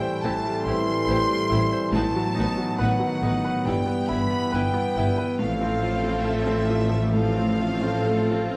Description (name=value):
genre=classical, romantic movement for piano and orchestra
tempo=69 BPM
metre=4/4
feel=rubato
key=unclear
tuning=A4 = 440 Hz
part: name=bright baby grand piano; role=melody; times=0.0-8.6 s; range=G2 to C5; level=-30 LUFS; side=equal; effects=none
part: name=rich chamber violin section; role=melody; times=0.0-8.6 s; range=E5 to C6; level=-37 LUFS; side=equal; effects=none
part: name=concert flute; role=second line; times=0.0-8.6 s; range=E5 to C6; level=-33 LUFS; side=equal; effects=none
part: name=mellow French horn section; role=sustained chords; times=0.0-8.6 s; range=B3 to B4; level=-34 LUFS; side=equal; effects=none
part: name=warm trombone section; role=sustained chords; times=0.0-8.6 s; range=D#3 to A3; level=-33 LUFS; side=equal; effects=none
part: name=dark studio violin section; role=second line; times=0.2-8.6 s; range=E4 to C5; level=-37 LUFS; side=equal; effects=none
part: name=rich chamber viola section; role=accompaniment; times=0.2-8.6 s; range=A3 to F4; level=-38 LUFS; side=equal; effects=none
part: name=clear chamber double bass section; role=bass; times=0.2-8.6 s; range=G1 to A1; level=-32 LUFS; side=equal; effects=none
part: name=mellow tuba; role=bass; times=0.2-8.6 s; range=G1 to A1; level=-35 LUFS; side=equal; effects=none
part: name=warm studio cello section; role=bass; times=0.2-8.6 s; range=G2 to A2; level=-34 LUFS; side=equal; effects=none
room=wet scoring stage reverb, RT60 2.0 s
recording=none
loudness=-24 LUFS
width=mono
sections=0.0-8.6 A section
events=none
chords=0.0 Am7; 1.9 B7/A; 3.7 Em/G; 5.4 F/A